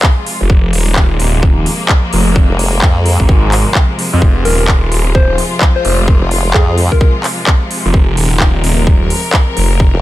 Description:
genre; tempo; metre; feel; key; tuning
bass house; 129 BPM; 4/4; swing 61% on 16ths; F minor; A4 = 440 Hz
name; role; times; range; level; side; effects
clear symphonic string section; sustained chords; 0.0-10.0 s; C3 to Bb4; -20 LUFS; left 2 dB; sidechain pumping
big-room dance drum kit; drums; 0.0-9.7 s; handclaps, hi-hat; -17 LUFS; equal; none
electronic kick drum; drums; 0.0-9.9 s; none; -10 LUFS; equal; none
phased detuned saw bass; bass; 0.4-9.9 s; Eb1 to F2; -13 LUFS; equal; phaser, overdrive, sidechain pumping
formant-sweep wobble bass; bass; 2.5-3.2, 6.2-6.9, 9.9-10.0 s; F1 to F2; -12 LUFS; equal; chorus, tube saturation, sidechain pumping
soft struck synth lead; melody; 4.5-7.1 s; Ab4 to C5; -20 LUFS; left 2 dB; chorus, ping-pong delay
room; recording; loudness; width
little or no reverb; none; -9 LUFS; side -16 dB against mid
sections
0.0-10.0 A section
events
none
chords
0.0 Fm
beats
0.03 | 0.50 0.96 1.43 1.89 | 2.36 2.82 3.29 3.75 | 4.22 4.68 5.15 5.61 | 6.08 6.54 7.01 7.47 | 7.94 8.40 8.87 9.34 | 9.80

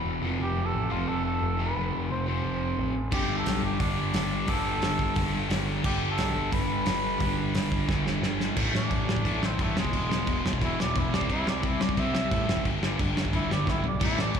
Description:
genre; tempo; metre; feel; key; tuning
punk rock; 176 BPM; 4/4; straight; unclear; A4 = 440 Hz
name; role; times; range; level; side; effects
dark cor anglais; melody; 0.0-14.4 s; G#3 to E5; -32 LUFS; right 1 dB; slapback echo, digital delay
crunchy overdriven guitar; riff; 0.0-14.4 s; E2 to C4; -31 LUFS; left 1 dB; none
fuzz picked electric bass; bass; 0.1-14.4 s; E1 to A2; -31 LUFS; equal; overdrive
thick fuzz guitar; riff; 3.1-14.4 s; E2 to C4; -32 LUFS; equal; distortion, slapback echo
loose indie drum kit; drums; 3.1-14.4 s; crash cymbal, hi-hat, kick drum, snare drum, toms; -30 LUFS; equal; none
room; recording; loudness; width
studio ambience; live gig heard through the venue's PA, recital hall reverb; -25 LUFS; side -7 dB against mid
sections
0.0-8.6 A section; 8.6-14.4 B section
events
half time 0.0-8.6; drum fill 7.9-8.6, 13.7-14.0; cor anglais solo 8.6-14.4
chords
0.2 F; 3.1 G; 8.6 A5; 9.8 E; 11.1 C; 12.5 G5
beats
0.06 | 0.40 0.74 1.08 1.42 | 1.76 2.10 2.44 2.78 | 3.12 3.46 3.80 4.14 | 4.48 4.83 5.17 5.51 | 5.85 6.19 6.53 6.87 | 7.21 7.55 7.89 8.23 | 8.57 8.91 9.25 9.59 | 9.93 10.28 10.62 10.96 | 11.29 11.63 11.97 12.31 | 12.65 12.99 13.33 13.67 | 14.01 14.35

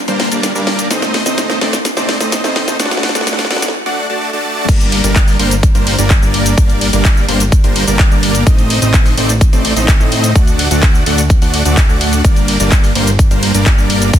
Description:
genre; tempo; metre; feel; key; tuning
EDM, festival progressive house; 127 BPM; 4/4; straight; G harmonic minor; A4 = 441 Hz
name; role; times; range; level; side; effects
fat analog bass; bass; 0.0-14.2 s; G1 to A2; -18 LUFS; equal; sidechain pumping, high-pass filter
dense compressed supersaw; riff; 0.1-14.2 s; G3 to A5; -15 LUFS; equal; sidechain pumping, digital delay
house drum kit; drums; 0.1-14.2 s; crash cymbal, handclaps, hi-hat, ride cymbal, shaker, snare drum; -17 LUFS; left 1 dB; none
electronic kick drum; drums; 4.7-14.2 s; none; -10 LUFS; equal; none
room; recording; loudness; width
digital ambience; dense, heavily limited modern master, high-pass filter; -10 LUFS; side -10 dB against mid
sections
0.0-4.7 A section; 4.7-14.2 B section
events
build-up 0.0-4.7; drum fill 0.0-3.7; break 3.7-4.7; drop 4.7-14.2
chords
0.0 Gm; 0.9 Adim; 2.8 D; 4.7 Gm; 8.5 Adim; 10.4 D; 12.2 Gm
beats
0.43 | 0.91 1.38 1.85 2.32 | 2.80 3.27 3.74 4.21 | 4.69 5.16 5.63 6.10 | 6.58 7.05 7.52 7.99 | 8.47 8.94 9.41 9.88 | 10.36 10.83 11.30 11.77 | 12.24 12.72 13.19 13.66 | 14.13

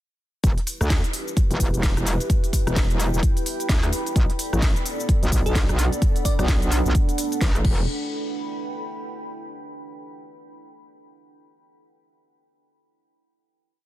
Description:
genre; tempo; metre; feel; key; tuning
bass house; 129 BPM; 4/4; swing 60% on 16ths; E minor; A4 = 440 Hz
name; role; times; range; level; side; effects
dark analog pad; sustained chords; 0.8-7.9 s; B3 to D5; -34 LUFS; equal; chorus, sidechain pumping
metallic wobble bass; bass; 0.4-7.9 s; E1 to D2; -22 LUFS; equal; distortion, chorus, tube saturation, sidechain pumping
electronic kick drum; drums; 0.4-7.8 s; none; -21 LUFS; equal; none
garage drum kit; drums; 0.4-7.8 s; cabasa, crash cymbal, hi-hat, rim click, snare drum; -30 LUFS; equal; none
deep dark ambient pad; texture; 1.3-9.7 s; D4 to B5; -32 LUFS; right 2 dB; chorus, built-in reverb, sidechain pumping
bell-like FM electric piano; melody; 5.5-6.4 s; A4 to D5; -33 LUFS; left 2 dB; chorus, dub echo
room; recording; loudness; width
digital ambience; dense, heavily limited modern master; -20 LUFS; side -14 dB against mid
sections
0.4-7.9 drop; 7.9-9.7 final chord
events
drop 0.4-7.9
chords
0.4 Em; 4.2 Bm7; 7.6 Em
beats
| 0.44 0.90 1.37 1.83 | 2.30 2.76 3.23 3.69 | 4.16 4.62 5.09 5.55 | 6.02 6.48 6.95 7.41 | 7.88 8.34 8.81 9.27

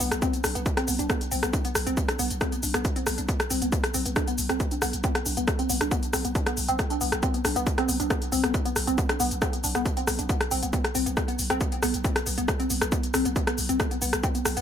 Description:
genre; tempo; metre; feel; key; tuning
driving peak-time techno; 137 BPM; 4/4; straight; unclear; A4 = 439 Hz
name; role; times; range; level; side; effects
woody wave-folded pluck; riff; 0.0-14.6 s; B3 to D4; -29 LUFS; equal; tube saturation, analog chorus, sidechain pumping, dub echo
growling 808-style bass; bass; 0.0-14.6 s; B1; -33 LUFS; equal; overdrive, sidechain pumping, low-pass filter
techno drum kit; drums; 0.0-14.6 s; hi-hat, rim click, shaker; -28 LUFS; left 1 dB; sidechain pumping on hats, sidechain pumping on perc
electronic kick drum; drums; 0.2-14.3 s; none; -28 LUFS; equal; none
room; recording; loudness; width
light reverb; none; -23 LUFS; side -9 dB against mid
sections
0.0-14.6 A section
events
none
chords
none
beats
| 0.22 0.66 1.10 1.53 | 1.97 2.41 2.85 3.29 | 3.72 4.16 4.60 5.04 | 5.48 5.91 6.35 6.79 | 7.23 7.67 8.10 8.54 | 8.98 9.42 9.86 10.29 | 10.73 11.17 11.61 12.05 | 12.48 12.92 13.36 13.80 | 14.23

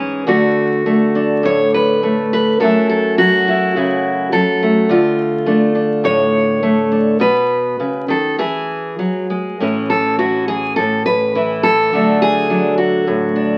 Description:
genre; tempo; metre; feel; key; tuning
folk, solo fingerstyle acoustic guitar; 104 BPM; 4/4; rubato; unclear; A4 = 440 Hz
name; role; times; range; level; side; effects
fingerpicked steel-string acoustic guitar; solo; 0.0-13.6 s; F#2 to C#5; -16 LUFS; equal; none
room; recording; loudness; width
moderate small room reverb, RT60 0.5 s; very old 78 rpm record, vinyl crackle; -16 LUFS; mono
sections
0.0-9.6 A section; 9.6-13.6 B section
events
none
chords
0.3 D; 2.6 F#m7; 4.9 Dm; 7.2 B; 8.4 Eadd9; 9.6 Aadd9; 11.9 D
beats
| 0.26 0.85 1.44 2.03 | 2.61 3.18 3.75 4.32 | 4.89 5.46 6.04 6.62 | 7.20 7.79 8.39 9.00 | 9.60 10.20 10.78 11.35 | 11.93 12.50 13.07

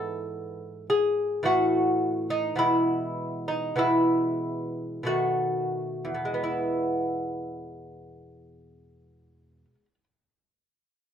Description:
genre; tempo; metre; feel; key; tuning
classical, baroque-style dance for lute; 42-54 BPM; 3/4; rubato; E major; A4 = 440 Hz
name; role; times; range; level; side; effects
lute; solo; 0.0-10.0 s; E2 to A4; -25 LUFS; equal; none
room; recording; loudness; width
light reverb; dark, warm production; -24 LUFS; side -8 dB against mid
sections
0.0-6.5 A section; 6.5-10.5 B section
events
slowing down 0.0-6.5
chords
0.0 E/G#; 1.5 F#m7/A; 2.6 E/B; 5.1 B7; 6.5 E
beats
0.34 1.46 | 2.60 3.80 5.08 | 6.45 7.80 9.15

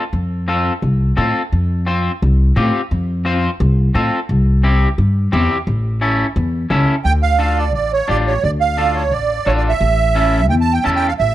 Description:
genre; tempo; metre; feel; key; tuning
latin; 174 BPM; 4/4; straight; D harmonic minor from 7.0 s; A4 = 442 Hz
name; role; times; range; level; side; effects
electric guitar at the edge of break-up; accompaniment; 0.0-11.1 s; C4 to C5; -20 LUFS; left 2 dB; none
upright bass; bass; 0.1-11.3 s; A1 to A2; -16 LUFS; equal; none
musette accordion; melody; 7.0-11.3 s; C#5 to A5; -17 LUFS; right 6 dB; none
room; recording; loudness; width
studio reverb; dry, close 1970s-style studio recording; -14 LUFS; side -14 dB against mid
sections
0.0-7.0 A section; 7.0-11.3 B section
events
none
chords
0.0 F; 4.3 C; 5.7 A; 7.0 Dm; 9.8 A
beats
| 0.13 0.48 0.83 1.17 | 1.52 1.87 2.21 2.56 | 2.90 3.25 3.60 3.94 | 4.29 4.63 4.98 5.32 | 5.67 6.01 6.36 6.71 | 7.05 7.39 7.74 8.09 | 8.43 8.78 9.12 9.47 | 9.81 10.16 10.51 10.85 | 11.20

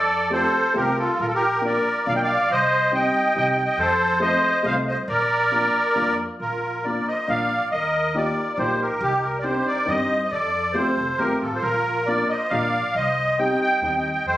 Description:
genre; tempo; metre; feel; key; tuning
musette waltz; 138 BPM; 3/4; straight; Bb major; A4 = 440 Hz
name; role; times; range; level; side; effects
musette accordion; melody; 0.0-14.4 s; F4 to G5; -20 LUFS; equal; none
musette accordion; second line; 0.0-14.4 s; Eb4 to Eb5; -30 LUFS; right 2 dB; none
upright bass; bass; 0.0-14.4 s; F1 to G2; -33 LUFS; equal; none
warm upright piano; accompaniment; 0.3-14.0 s; G3 to Bb4; -26 LUFS; left 1 dB; none
room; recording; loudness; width
moderate studio reverb, RT60 0.6 s; recorded on a phone in the room, studio reverb, compression; -19 LUFS; side -14 dB against mid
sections
0.0-6.4 A section; 6.4-14.4 A section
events
none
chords
0.0 Fadd9; 1.2 Bb; 2.5 Cm; 3.8 F; 5.1 Bb; 7.7 Ebadd9; 9.0 Cmadd9; 10.3 Fadd9; 11.6 Bb; 12.9 Cm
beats
0.31 0.74 | 1.19 1.62 2.06 | 2.49 2.92 3.35 | 3.79 4.22 4.65 | 5.08 5.52 5.96 | 6.40 6.84 7.28 | 7.71 8.15 8.58 | 9.02 9.45 9.88 | 10.32 10.75 11.19 | 11.63 12.07 12.51 | 12.95 13.38 13.81 | 14.24

